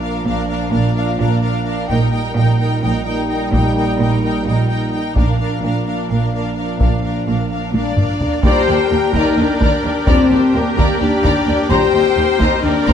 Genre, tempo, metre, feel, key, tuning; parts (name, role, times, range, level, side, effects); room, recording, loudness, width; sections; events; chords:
cinematic, epic orchestral film score; 257 BPM (eighths); 7/8; straight; A4 = 439 Hz
rich symphonic violin section; melody; 0.0-12.9 s; Bb4 to G5; -26 LUFS; left 3 dB
clear symphonic violin section; second line; 0.0-12.9 s; G4 to Bb5; -25 LUFS; left 3 dB
clear symphonic viola section; accompaniment; 0.0-12.9 s; D4 to C5; -24 LUFS; right 1 dB
clear trombone section; sustained chords; 0.0-11.9 s; Bb2 to G3; -25 LUFS; right 3 dB
dark French horn section; sustained chords; 0.0-12.9 s; Bb3 to G4; -20 LUFS; left 4 dB
rich symphonic cello section; bass; 0.0-12.9 s; Eb2 to Bb2; -23 LUFS; right 2 dB
rich symphonic double bass section; bass; 0.0-12.9 s; Bb1 to Eb2; -21 LUFS; right 3 dB
taiko ensemble; drums; 1.9-12.9 s; -19 LUFS; equal
pipe organ, strings celeste; sustained chords; 8.4-12.9 s; C4 to G5; -25 LUFS; left 2 dB
clear trumpet section; stabs; 8.4-11.9 s; C5 to D5; -26 LUFS; left 3 dB
wet recital hall reverb, RT60 1.3 s; dark, warm production; -14 LUFS; side -8 dB against mid
0.0-8.4 A section; 8.4-12.9 B section
build-up 0.0-8.4; drum fill 7.7-8.4
0.0 Bb; 1.9 Eb/Bb; 5.2 Bb; 8.4 Gm/Eb